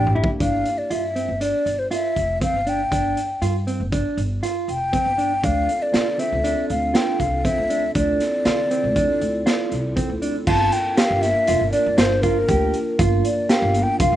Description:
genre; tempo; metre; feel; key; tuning
progressive instrumental, band music in an uneven meter; 119 BPM; 5/4; straight; unclear; A4 = 436 Hz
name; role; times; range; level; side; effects
breathy mellow concert flute; melody; 0.0-14.2 s; Bb4 to A5; -22 LUFS; left 1 dB; slapback echo
dark analog pad; accompaniment; 0.0-0.4, 5.6-14.2 s; Bb3 to Bb4; -28 LUFS; right 1 dB; chorus, slapback echo
mellow electric guitar; arpeggios; 0.0-14.1 s; C4 to G4; -25 LUFS; right 3 dB; none
upright bass; bass; 0.0-14.2 s; F1 to D3; -26 LUFS; equal; none
raw garage drum kit; drums; 0.1-14.1 s; crash cymbal, hi-hat, kick drum, snare drum, toms; -23 LUFS; equal; none
room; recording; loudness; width
little or no reverb; recorded outdoors, with no room sound, nothing above 10.3 kHz; -18 LUFS; side -12 dB against mid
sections
0.4-10.5 A section; 10.5-14.2 B section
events
drum fill 0.0-0.4; flute solo 10.5-14.2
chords
0.4 G5; 5.4 Dm7; 10.5 Gm7

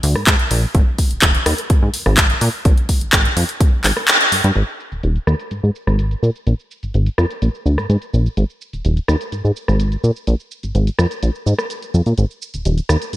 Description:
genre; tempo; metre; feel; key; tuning
filtered disco house; 126 BPM; 4/4; straight; Bb mixolydian; A4 = 440 Hz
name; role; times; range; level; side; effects
plucky analog bass; bass; 0.0-13.2 s; Eb1 to Bb2; -16 LUFS; equal; sidechain pumping, low-pass filter
house drum kit; drums; 0.0-13.2 s; handclaps, hi-hat, rim click, shaker; -18 LUFS; equal; sidechain pumping on hats, low-pass filter on hats, studio reverb, low-pass filter on snare, sidechain pumping on perc, low-pass filter on perc
electronic kick drum; drums; 0.3-3.7 s; none; -15 LUFS; equal; studio reverb
room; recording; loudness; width
light reverb; bright 1980s-style digital production; -15 LUFS; side -14 dB against mid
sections
0.0-4.6 A section; 4.6-13.2 B section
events
kick drops out 4.1-4.6; band accent 4.1; filter sweep on analog synth bass 4.6-13.2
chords
none

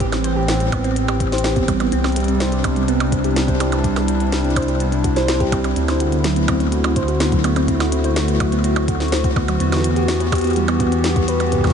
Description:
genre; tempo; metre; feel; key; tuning
IDM; 125 BPM; 4/4; straight; C lydian; A4 = 440 Hz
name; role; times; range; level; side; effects
hollow soft pad; sustained chords; 0.0-11.7 s; A2 to G4; -20 LUFS; equal; chorus
harp-like synth pluck; arpeggios; 0.0-11.7 s; F#3 to C5; -22 LUFS; right 1 dB; chorus, phaser, ping-pong delay
round analog bass; bass; 0.0-11.7 s; A1 to E2; -22 LUFS; equal; none
electronic kick drum; drums; 0.0-11.7 s; none; -22 LUFS; equal; overdrive, studio reverb
glitchy drum kit; drums; 0.0-11.7 s; hi-hat, percussion blips, snare drum; -24 LUFS; right 1 dB; overdrive, studio reverb, ping-pong delay
room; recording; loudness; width
moderate huge ambient reverb, RT60 7.4 s; dreamy mix soaked in reverb, nothing above 10.5 kHz; -16 LUFS; side -7 dB against mid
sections
0.0-11.7 A section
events
none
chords
0.0 Am7; 1.9 C; 5.8 D7; 9.6 Em

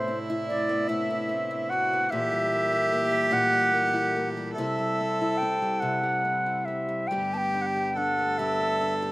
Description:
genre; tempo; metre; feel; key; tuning
celtic folk, Celtic slow air; 48 BPM (dotted quarters); 6/8; rubato; unclear; A4 = 439 Hz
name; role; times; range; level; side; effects
mellow wooden flute; melody; 0.0-8.9 s; C5 to A5; -26 LUFS; equal; slapback echo
rich cello; second line; 0.0-9.1 s; E4 to A4; -29 LUFS; right 1 dB; slapback echo
picked old ladder-braced acoustic guitar; accompaniment; 0.0-9.1 s; A2 to G4; -32 LUFS; left 2 dB; none
pipe organ, sparkling flutes; sustained chords; 0.0-9.1 s; G2 to A4; -38 LUFS; equal; none
room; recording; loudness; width
little or no reverb; recorded outdoors, with no room sound; -24 LUFS; side -18 dB against mid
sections
0.0-9.1 A section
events
none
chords
0.0 Amadd9; 2.1 Gm6/Bb; 4.5 C; 7.1 G

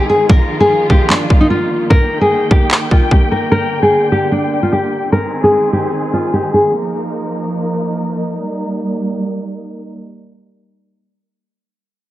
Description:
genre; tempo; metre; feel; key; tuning
hip hop, trap; 149 BPM; 4/4; half-time; Eb major; A4 = 438 Hz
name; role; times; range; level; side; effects
nylon-string guitar; melody; 0.0-6.7 s; D4 to Bb4; -14 LUFS; left 1 dB; low-pass filter, digital delay
muted studio string section; sustained chords; 0.0-9.9 s; D3 to G5; -20 LUFS; right 1 dB; low-pass filter
trap drum kit; drums; 0.3-3.2 s; handclaps, kick drum; -11 LUFS; equal; vintage 12-bit sampler grit
room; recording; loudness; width
light reverb, digital ambience; none; -12 LUFS; side -14 dB against mid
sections
0.0-10.0 A section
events
break 0.0-3.5; filter sweep 0.0-10.0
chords
0.3 Bbsus4; 1.9 Eb; 3.5 Gm; 5.1 Ab; 6.7 Bbsus4; 8.3 Eb

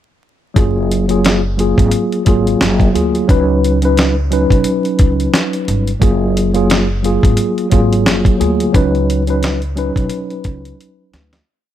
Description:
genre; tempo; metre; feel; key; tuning
hip hop, boom-bap hip-hop; 88 BPM; 4/4; swing 56% on 16ths; F# major; A4 = 442 Hz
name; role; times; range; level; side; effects
mellow tine electric piano; accompaniment; 0.5-11.4 s; F#3 to B4; -15 LUFS; equal; medium stereo tremolo, cassette tape, high-pass filter, low-pass filter
upright bass; bass; 0.6-11.4 s; F#1 to D2; -17 LUFS; equal; none
dusty soul sampler-style drum kit; drums; 0.6-11.5 s; hi-hat, kick drum, snare drum; -14 LUFS; equal; none
room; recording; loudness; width
little or no reverb; vinyl crackle; -12 LUFS; side -11 dB against mid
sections
0.6-11.5 verse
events
fade-out 8.7-11.5; drum fill 10.8-11.5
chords
0.6 F#maj9; 3.3 C#9sus4; 6.0 F#maj9; 8.7 C#9sus4

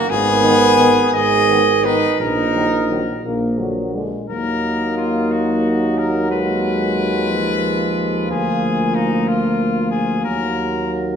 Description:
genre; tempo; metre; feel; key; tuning
classical, brass quintet; 56-63 BPM (dotted quarters); 6/8; rubato; Eb minor; A4 = 440 Hz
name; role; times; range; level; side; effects
bright trumpet; melody; 0.0-10.9 s; Eb4 to Eb5; -21 LUFS; left 5 dB; none
mellow flugelhorn; second line; 0.0-10.9 s; Cb4 to Ab4; -21 LUFS; right 4 dB; none
mellow tuba; bass; 0.1-11.2 s; Ab1 to Eb2; -21 LUFS; right 1 dB; none
dark French horn; accompaniment; 0.4-11.2 s; Gb3 to Cb4; -23 LUFS; left 2 dB; none
warm euphonium; accompaniment; 0.4-11.2 s; D3 to Gb3; -25 LUFS; right 2 dB; none
room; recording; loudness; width
wet recital hall reverb, RT60 1.6 s; heard from further back in the room; -15 LUFS; side -7 dB against mid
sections
0.0-4.3 A section; 4.3-11.2 B section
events
none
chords
0.1 Abm; 2.2 Ebm/Bb; 3.2 Bb; 4.3 Ebm; 6.3 Fm7b5/Eb; 8.3 Bb7/D; 10.2 Ebm

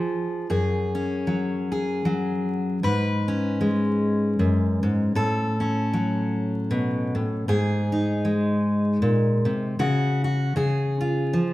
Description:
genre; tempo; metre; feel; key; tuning
folk, solo fingerstyle acoustic guitar; 78 BPM; 3/4; swing 57% on 8ths; F# harmonic minor; A4 = 438 Hz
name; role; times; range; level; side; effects
fingerpicked steel-string acoustic guitar; solo; 0.0-11.5 s; F#2 to B4; -21 LUFS; equal; none
room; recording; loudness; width
moderate recital hall reverb, RT60 1.4 s; minimal, uncompressed stereo recording, vinyl crackle; -21 LUFS; side -16 dB against mid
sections
0.0-2.8 A section; 2.8-11.5 B section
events
none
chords
0.0 C# (rootless); 0.5 F#sus2; 2.8 F#sus24; 5.1 F#m/A; 7.5 G#; 9.8 C#sus4; 10.6 C#

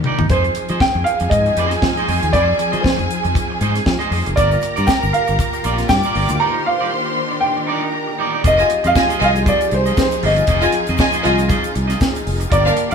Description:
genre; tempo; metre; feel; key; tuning
disco; 118 BPM; 4/4; swing 56% on 16ths; F dorian; A4 = 441 Hz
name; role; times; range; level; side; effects
clear studio string section; sustained chords; 0.0-12.9 s; Eb3 to Ab4; -25 LUFS; left 2 dB; none
tight funk drum kit; drums; 0.0-12.9 s; hi-hat, kick drum, snare drum, toms; -20 LUFS; equal; none
electric guitar at the edge of break-up; accompaniment; 0.1-12.9 s; Eb4 to Eb5; -24 LUFS; right 4 dB; none
fingered electric bass; bass; 0.2-12.9 s; F1 to F3; -20 LUFS; left 1 dB; none
warm baby grand piano; melody; 0.3-12.9 s; C5 to Bb5; -19 LUFS; right 1 dB; none
warm symphonic violin section; second line; 0.3-12.8 s; D4 to D6; -22 LUFS; equal; none
tube shaker; percussion; 4.4-12.9 s; none; -39 LUFS; left 6 dB; none
room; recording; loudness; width
wet studio reverb, RT60 0.9 s; band playing live in one room; -14 LUFS; side -6 dB against mid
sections
0.3-8.4 A section; 8.4-12.9 B section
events
drum fill 0.0-0.3; break 6.4-8.4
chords
0.3 Fm7; 4.4 Gm7; 6.4 Ebmaj7; 8.4 Fm7

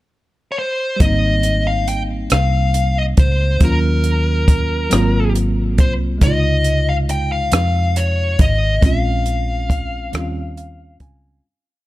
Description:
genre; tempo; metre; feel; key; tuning
slow six-eight R&B; 46 BPM (dotted quarters); 6/8; straight; Ab major; A4 = 440 Hz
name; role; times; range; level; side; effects
smooth overdriven lead guitar; melody; 0.5-11.0 s; Bb4 to G5; -21 LUFS; left 2 dB; none
mellow tine electric piano; accompaniment; 1.0-11.5 s; C3 to Ab5; -24 LUFS; right 1 dB; medium stereo tremolo
vintage muted fingered electric bass; bass; 1.0-11.4 s; Ab1 to F2; -18 LUFS; equal; none
compact cocktail drum kit; drums; 1.0-11.2 s; hi-hat, kick drum, rim click; -15 LUFS; equal; none
room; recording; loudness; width
little or no reverb; none; -14 LUFS; side -17 dB against mid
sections
0.0-1.0 pickup bar; 1.0-11.4 verse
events
fade-out 8.8-11.4; tine electric piano fill 10.1-11.4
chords
0.0 N.C.; 1.0 Abmaj7; 3.6 Ebm9; 4.9 Ab13; 6.2 Dbmaj9; 8.8 Bbm7; 10.1 Eb13

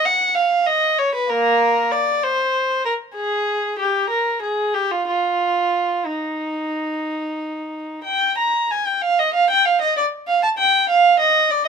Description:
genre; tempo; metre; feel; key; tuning
classical, baroque-style suite movement for unaccompanied violin; 60-66 BPM (dotted quarters); 12/8; rubato; Eb major; A4 = 440 Hz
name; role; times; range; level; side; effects
dark violin; solo; 0.0-11.7 s; Bb3 to Bb5; -17 LUFS; right 1 dB; none
room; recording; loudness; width
light reverb; close, detailed microphones; -17 LUFS; side -6 dB against mid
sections
0.0-9.0 A section; 9.0-11.7 A section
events
none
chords
none

